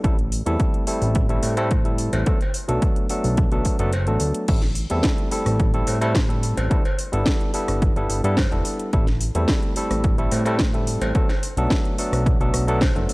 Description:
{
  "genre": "nu-disco, nu disco",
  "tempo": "108 BPM",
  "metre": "4/4",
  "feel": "straight",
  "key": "A dorian",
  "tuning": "A4 = 438 Hz",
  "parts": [
    { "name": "barky tine electric piano", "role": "accompaniment", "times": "0.0-13.1 s", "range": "F#3 to A4", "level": "-25 LUFS", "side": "equal", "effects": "sidechain pumping, tape echo" },
    { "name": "fat analog bass", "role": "bass", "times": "0.0-13.1 s", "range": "E1 to A2", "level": "-23 LUFS", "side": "equal", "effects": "none" },
    { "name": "electronic kick drum", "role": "drums", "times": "0.0-12.9 s", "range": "none", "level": "-21 LUFS", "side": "equal", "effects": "overdrive" },
    { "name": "house drum kit", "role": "drums", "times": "0.0-13.1 s", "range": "crash cymbal, hi-hat, rim click, snare drum", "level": "-28 LUFS", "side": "equal", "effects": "overdrive" },
    { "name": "cowbell", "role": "percussion", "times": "1.4-12.9 s", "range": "none", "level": "-31 LUFS", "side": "equal", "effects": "none" }
  ],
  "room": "digital ambience",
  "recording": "dry, gritty hardware recording, cassette tape",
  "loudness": "-18 LUFS",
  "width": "side -23 dB against mid",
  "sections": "0.0-13.1 A section",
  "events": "kick drops out 3.9-4.5",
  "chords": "0.0 Am7; 2.3 Bm7; 4.5 Am7; 6.7 G69; 8.9 Am7; 11.2 Bm7"
}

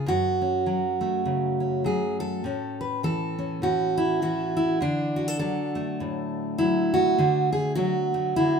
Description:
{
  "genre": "folk, solo fingerstyle acoustic guitar",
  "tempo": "101 BPM",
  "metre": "4/4",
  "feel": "swing 58% on 8ths",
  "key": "unclear",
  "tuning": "A4 = 440 Hz",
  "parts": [
    { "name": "fingerpicked steel-string acoustic guitar", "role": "solo", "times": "0.0-8.6 s", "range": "F#2 to B4", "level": "-23 LUFS", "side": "right 1 dB", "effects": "none" }
  ],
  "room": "moderate studio reverb, RT60 0.8 s",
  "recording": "minimal, uncompressed stereo recording",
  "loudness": "-23 LUFS",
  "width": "side -6 dB against mid",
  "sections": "0.0-2.4 A section; 2.4-8.6 B section",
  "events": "none",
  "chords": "0.1 F#m; 2.4 A6; 4.8 Dadd9"
}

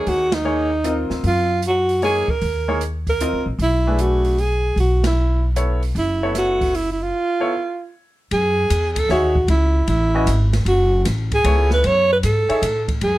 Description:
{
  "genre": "modal jazz",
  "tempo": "153 BPM",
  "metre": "3/4",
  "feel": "swing 67% on 8ths",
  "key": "F# dorian from 8.3 s",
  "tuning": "A4 = 440 Hz",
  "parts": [
    { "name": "breathy alto saxophone", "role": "melody", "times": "0.0-13.2 s", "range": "Eb4 to C#5", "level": "-19 LUFS", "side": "right 1 dB", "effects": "none" },
    { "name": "clear baby grand piano", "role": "accompaniment", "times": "0.0-12.6 s", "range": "A3 to E5", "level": "-24 LUFS", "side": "left 2 dB", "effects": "none" },
    { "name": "upright bass", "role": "bass", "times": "0.1-13.2 s", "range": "F#1 to A2", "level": "-20 LUFS", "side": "equal", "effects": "none" },
    { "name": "open jazz drum kit", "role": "drums", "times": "0.1-13.1 s", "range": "hi-hat, kick drum, ride cymbal, snare drum", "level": "-28 LUFS", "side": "right 1 dB", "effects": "none" }
  ],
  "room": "light reverb",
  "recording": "none",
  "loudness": "-16 LUFS",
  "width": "side -16 dB against mid",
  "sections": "0.0-8.3 A section; 8.3-13.2 B section",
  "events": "band accent 0.3, 5.0; break 7.1-8.3",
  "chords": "0.0 Ebm11; 3.6 Bm11; 7.1 Db7alt; 8.3 F#m9"
}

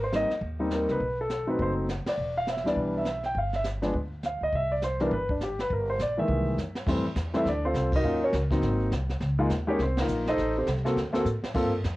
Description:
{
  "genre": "jazz piano trio",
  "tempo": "205 BPM",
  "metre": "4/4",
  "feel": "swing 60% on 8ths",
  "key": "unclear",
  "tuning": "A4 = 440 Hz",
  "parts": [
    { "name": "warm concert grand piano", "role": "melody", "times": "0.0-11.7 s", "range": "Eb3 to G5", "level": "-27 LUFS", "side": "equal", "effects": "cassette tape" },
    { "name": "upright bass", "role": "bass", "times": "0.0-12.0 s", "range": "E1 to A2", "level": "-31 LUFS", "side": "equal", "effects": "none" },
    { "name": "jazz brush drum kit", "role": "drums", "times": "0.1-12.0 s", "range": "brushed snare drum, crash cymbal, hi-hat, kick drum, ride cymbal, snare drum", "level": "-35 LUFS", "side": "equal", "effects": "cassette tape" }
  ],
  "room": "light reverb",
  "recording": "home recording on cassette",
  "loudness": "-25 LUFS",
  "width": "side -18 dB against mid",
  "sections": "0.0-6.9 A section; 6.9-12.0 B section",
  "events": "band accent 2.0, 7.9, 9.9; drum fill 6.6, 11.3",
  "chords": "0.0 Abmaj9; 1.0 B7b9; 2.2 Em7; 3.4 G7(no3); 4.5 Cmaj9; 5.7 Gm; 6.3 C7alt; 6.9 Fmaj7; 8.0 Ebm9; 8.6 Ab7; 9.2 Db69; 10.4 Adim; 11.0 D5"
}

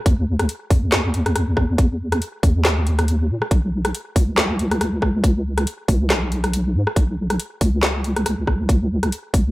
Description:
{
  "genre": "deep dubstep",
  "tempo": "139 BPM",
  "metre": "4/4",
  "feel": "swing 56% on 16ths, half-time",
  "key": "unclear",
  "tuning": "A4 = 440 Hz",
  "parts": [
    { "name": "deep soft wobble bass", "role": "bass", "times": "0.1-9.5 s", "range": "B1 to Bb2", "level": "-20 LUFS", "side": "equal", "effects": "chorus, tube saturation" },
    { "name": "electronic kick drum", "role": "drums", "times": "0.1-9.4 s", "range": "none", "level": "-17 LUFS", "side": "equal", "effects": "none" },
    { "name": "garage drum kit", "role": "drums", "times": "0.1-9.4 s", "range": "handclaps, hi-hat, rim click, snare drum", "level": "-22 LUFS", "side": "equal", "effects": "none" }
  ],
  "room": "light reverb",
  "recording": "none",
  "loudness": "-17 LUFS",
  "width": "side -18 dB against mid",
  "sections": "0.0-9.5 A section",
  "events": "none",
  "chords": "none"
}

